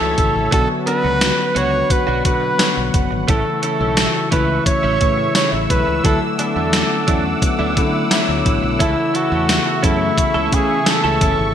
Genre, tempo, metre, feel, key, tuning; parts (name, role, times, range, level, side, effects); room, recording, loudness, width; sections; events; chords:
1980s-style pop; 87 BPM; 4/4; straight; A major; A4 = 440 Hz
warm flugelhorn; melody; 0.0-11.5 s; E4 to C#5; -20 LUFS; right 1 dB; ping-pong delay
mellow tine electric piano; accompaniment; 0.0-11.5 s; C#3 to F#4; -21 LUFS; left 3 dB; lush chorus
sweeping resonant pad; sustained chords; 0.0-11.5 s; A3 to E6; -25 LUFS; right 1 dB; chorus
direct-recorded clean electric guitar; riff; 0.0-11.4 s; F#3 to A4; -26 LUFS; right 4 dB; analog chorus, ping-pong delay
fretless electric bass; bass; 0.0-11.5 s; F#1 to D3; -23 LUFS; right 1 dB
gated 80s digital drum machine; drums; 0.2-11.4 s; hi-hat, kick drum, snare drum, tambourine; -18 LUFS; equal; gated reverb, gated reverb snare
moderate lush hall reverb, RT60 2.1 s; bright 1980s-style digital production; -14 LUFS; side -9 dB against mid
0.0-11.5 A section
0.0 A; 0.5 Bm; 3.3 A; 6.0 Dadd9; 8.8 A6